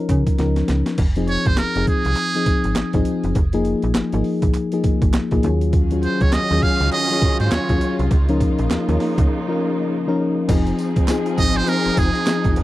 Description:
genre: R&B, new jack swing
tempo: 101 BPM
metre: 4/4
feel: swing 60% on 16ths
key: unclear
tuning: A4 = 440 Hz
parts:
  - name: mellow FM electric piano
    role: accompaniment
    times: 0.0-12.6 s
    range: F3 to Bb4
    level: -21 LUFS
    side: left 3 dB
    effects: chorus
  - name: slap-like FM bass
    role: bass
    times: 0.1-12.6 s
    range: F1 to Db3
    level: -21 LUFS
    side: right 1 dB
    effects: none
  - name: breakbeat sampler-style drum kit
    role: drums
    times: 0.1-12.6 s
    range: crash cymbal, hi-hat, kick drum, snare drum, tambourine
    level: -20 LUFS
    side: right 1 dB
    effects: none
  - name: trumpet with metal mute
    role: melody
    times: 1.3-12.6 s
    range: Ab4 to F5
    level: -22 LUFS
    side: right 3 dB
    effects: none
  - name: group handclap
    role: percussion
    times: 1.6-12.4 s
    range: none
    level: -32 LUFS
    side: right 7 dB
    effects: none
  - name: warm symphonic string section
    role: sustained chords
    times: 5.7-12.6 s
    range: Db3 to Ab4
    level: -26 LUFS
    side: right 2 dB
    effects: none
room: little or no reverb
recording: dry, close 1970s-style studio recording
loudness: -16 LUFS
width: side -16 dB against mid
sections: 1.0-10.5 A section; 10.5-12.6 B section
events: drum fill 0.4-1.0; break 9.3-10.5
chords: 0.0 Db69; 1.0 Fm7; 3.4 Bb7sus4/F; 5.4 Ebm11; 8.1 Db69; 10.5 Fm7

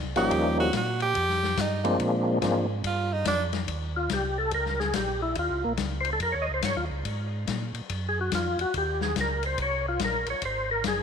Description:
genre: soul jazz organ trio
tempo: 142 BPM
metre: 4/4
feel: swing 64% on 8ths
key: Eb mixolydian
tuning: A4 = 440 Hz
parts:
  - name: mellow tonewheel organ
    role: bass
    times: 0.0-11.0 s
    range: Gb1 to Bb2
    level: -32 LUFS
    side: right 1 dB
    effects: slow rotary speaker
  - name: edgy tenor saxophone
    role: melody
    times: 0.2-3.4 s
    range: D4 to G4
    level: -27 LUFS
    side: right 3 dB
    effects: none
  - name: percussive tonewheel organ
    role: melody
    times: 0.2-11.0 s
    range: F3 to Eb5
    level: -27 LUFS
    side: left 1 dB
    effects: slow rotary speaker, overdrive, chorus vibrato, tape echo
  - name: vintage drum kit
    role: drums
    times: 0.2-11.0 s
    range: hi-hat, kick drum, ride cymbal, snare drum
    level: -33 LUFS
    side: left 9 dB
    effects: none
room: moderate echo chamber reverb, RT60 1.8 s, small room ambience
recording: 1960s-style stereo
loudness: -25 LUFS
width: side -7 dB against mid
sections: 0.0-3.7 A section; 3.7-11.0 A section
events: tenor saxophone solo 0.0-3.7; tonewheel organ solo 3.7-11.0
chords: 0.3 Eb9; 2.0 Bb9; 3.7 Eb9; 7.0 Absus2; 8.7 Eb5; 10.4 Ab9

